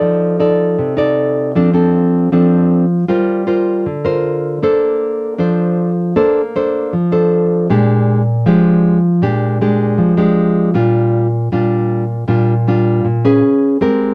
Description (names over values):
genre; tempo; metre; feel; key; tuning
bossa nova; 156 BPM; 4/4; straight; G minor, Bb major from 4.6 s; A4 = 440 Hz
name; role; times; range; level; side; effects
nylon-string guitar; solo; 0.0-14.1 s; Bb2 to D5; -14 LUFS; equal; none
room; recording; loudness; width
moderate studio reverb, RT60 0.5 s; none; -14 LUFS; mono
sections
0.0-4.6 A section; 4.6-14.1 B section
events
none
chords
0.0 F6; 1.6 Dm7/F; 3.1 Gm7; 4.6 Bbmaj9; 7.7 Bb6; 13.4 Abmadd11/Db